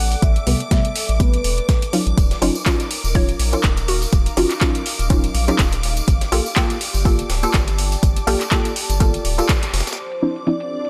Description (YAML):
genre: deep house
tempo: 123 BPM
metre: 4/4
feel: swing 56% on 16ths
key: unclear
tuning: A4 = 438 Hz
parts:
  - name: mellow horn-like synth lead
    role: melody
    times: 0.0-1.9, 10.0-10.9 s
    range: B4 to F#5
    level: -30 LUFS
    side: equal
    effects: analog chorus, cassette tape, tape echo
  - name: round analog bass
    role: bass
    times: 0.0-9.8 s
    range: D1 to C2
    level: -24 LUFS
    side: equal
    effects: sidechain pumping
  - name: airy breathy pad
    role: texture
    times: 0.0-10.9 s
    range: D4 to A5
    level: -35 LUFS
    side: equal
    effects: chorus, phaser, sidechain pumping
  - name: string machine, violins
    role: texture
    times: 0.0-10.9 s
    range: D6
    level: -35 LUFS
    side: equal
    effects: ensemble chorus, sidechain pumping
  - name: breakbeat sampler-style drum kit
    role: drums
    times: 0.1-10.0 s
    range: hi-hat, snare drum, tambourine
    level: -33 LUFS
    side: equal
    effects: none
  - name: deep house drum kit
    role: drums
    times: 0.2-10.9 s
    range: handclaps, hi-hat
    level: -27 LUFS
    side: equal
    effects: overdrive, low-pass filter on hats, low-pass filter on snare, low-pass filter on room
  - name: electronic kick drum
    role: drums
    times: 0.2-9.6 s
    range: none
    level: -20 LUFS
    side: equal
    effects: overdrive
  - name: filtered dub chord stab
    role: stabs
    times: 0.5-10.7 s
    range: C3 to A4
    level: -25 LUFS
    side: equal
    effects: lush chorus, sidechain pumping, tape echo
  - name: tambourine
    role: percussion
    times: 2.2-10.0 s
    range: none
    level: -36 LUFS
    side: equal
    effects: none
  - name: hollow square pluck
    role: melody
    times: 3.2-6.1 s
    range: Gb4 to Db5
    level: -30 LUFS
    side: equal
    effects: chorus, cassette tape, dub echo
  - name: soft string machine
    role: sustained chords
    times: 10.2-10.9 s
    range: F3 to D5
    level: -34 LUFS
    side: equal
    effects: phaser, ensemble chorus, sidechain pumping
room: digital ambience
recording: none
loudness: -19 LUFS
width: mono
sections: 0.0-10.0 A section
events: filter sweep on synth stab 0.0-10.0; band accent 9.5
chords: 0.0 Am9; 2.2 Ebm9; 6.1 Gm9; 10.0 Dm9